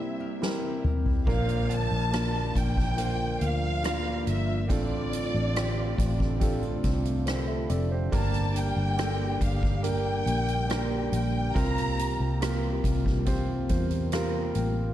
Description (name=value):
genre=pop ballad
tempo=70 BPM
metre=4/4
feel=straight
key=unclear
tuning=A4 = 440 Hz
part: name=warm studio violin section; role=melody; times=0.0-12.4 s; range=D5 to Bb5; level=-34 LUFS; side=left 1 dB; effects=digital delay
part: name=clear concert grand piano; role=accompaniment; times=0.0-14.9 s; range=C2 to G5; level=-32 LUFS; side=right 3 dB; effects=none
part: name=warm analog pad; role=sustained chords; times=0.0-14.9 s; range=C3 to D5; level=-36 LUFS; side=left 1 dB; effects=chorus
part: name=nylon-string guitar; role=arpeggios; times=0.0-14.9 s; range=G2 to Bb4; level=-37 LUFS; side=left 8 dB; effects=digital delay
part: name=soft-mallet drum kit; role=drums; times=0.4-14.8 s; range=crash cymbal, hi-hat, kick drum, rim click, snare drum, toms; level=-30 LUFS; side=equal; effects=none
part: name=vintage muted fingered electric bass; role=bass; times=1.3-14.9 s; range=F1 to E2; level=-29 LUFS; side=equal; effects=none
room=light reverb, small room ambience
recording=dark, warm production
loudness=-25 LUFS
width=side -12 dB against mid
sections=0.0-1.3 A section; 1.3-14.9 B section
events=drum fill 0.4-1.3; grand piano fill 13.3-14.9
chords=0.0 C7; 1.3 Bb; 4.7 F6/A; 8.1 Gm; 11.6 C7sus4